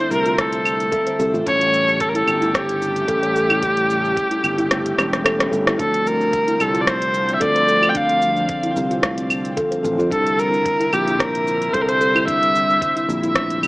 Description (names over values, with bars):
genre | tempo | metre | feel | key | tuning
organic downtempo | 111 BPM | 4/4 | swing 54% on 16ths | D minor | A4 = 440 Hz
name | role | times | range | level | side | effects
rich kamancheh | melody | 0.0-13.0 s | G4 to G5 | -19 LUFS | equal | digital delay
mellow tine electric piano | accompaniment | 0.0-13.7 s | D3 to E5 | -30 LUFS | left 1 dB | none
airy breathy pad | sustained chords | 0.0-13.7 s | C3 to G4 | -30 LUFS | equal | chorus, sidechain pumping
kalimba | arpeggios | 0.0-13.7 s | A3 to C#5 | -24 LUFS | equal | tape echo
sustaining fretless electric bass | bass | 0.1-13.7 s | E1 to F2 | -26 LUFS | equal | sidechain pumping
organic electronic drum kit | drums | 0.1-13.7 s | claves, hi-hat, rim click, shaker | -22 LUFS | equal | overdrive
electronic kick drum | drums | 0.4-13.5 s | none | -34 LUFS | equal | none
room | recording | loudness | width
moderate echo chamber reverb, RT60 2.1 s | AM radio sound | -16 LUFS | side -22 dB against mid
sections
0.0-13.7 A section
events
kick drops out 4.7-5.8; drum fill 5.0-5.8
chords
0.0 Fmaj7; 1.5 A7; 5.8 Dm7; 10.1 C7